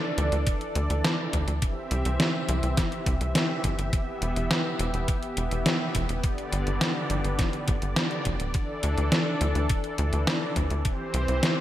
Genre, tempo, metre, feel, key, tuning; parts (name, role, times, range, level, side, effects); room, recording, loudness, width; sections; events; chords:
synthwave; 104 BPM; 4/4; straight; A4 = 439 Hz
brassy analog pad; sustained chords; 0.0-11.6 s; D3 to E5; -30 LUFS; equal; chorus, sidechain pumping
tight sequencer bass; bass; 0.2-11.4 s; D1 to D2; -27 LUFS; equal
detuned 8-bit digital drum machine; drums; 0.2-11.5 s; hi-hat, snare drum; -28 LUFS; equal; overdrive, gated reverb
electronic kick drum; drums; 0.5-11.0 s; -28 LUFS; equal; overdrive
moderate plate reverb, RT60 2.8 s; bright 1980s-style digital production; -24 LUFS; side -13 dB against mid
0.0-11.6 A section
0.0 Dsus2; 1.6 C; 3.9 Em; 6.2 G; 8.5 Dsus2; 10.9 C